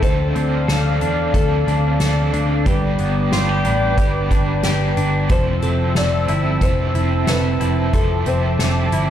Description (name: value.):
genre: dream pop.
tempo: 91 BPM.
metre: 4/4.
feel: straight.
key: F lydian.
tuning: A4 = 437 Hz.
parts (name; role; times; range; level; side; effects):
felt-muted upright piano; melody; 0.0-9.1 s; A4 to D5; -26 LUFS; left 4 dB; tape echo.
crunchy overdriven guitar; accompaniment; 0.0-9.1 s; G2 to A4; -26 LUFS; right 4 dB; tremolo, wide subtle chorus.
warm analog pad; sustained chords; 0.0-9.1 s; C4 to E6; -25 LUFS; right 1 dB; chorus.
semi-hollow electric guitar; arpeggios; 0.0-9.1 s; F3 to A4; -24 LUFS; left 2 dB; lush chorus, tape echo.
vintage muted picked electric bass; bass; 0.0-9.1 s; F1 to E2; -20 LUFS; equal; none.
soft-mallet drum kit; drums; 0.0-9.1 s; hi-hat, kick drum, snare drum; -21 LUFS; equal; none.
glassy synth bell; texture; 5.6-6.6 s; A4; -35 LUFS; left 1 dB; none.
room: moderate scoring stage reverb, RT60 2.0 s.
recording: played on a big sound system in a bare room, large studio reverb.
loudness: -16 LUFS.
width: side -10 dB against mid.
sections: 0.0-9.1 A section.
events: none.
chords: 0.0 Dm7; 2.7 G; 5.3 Fmaj7.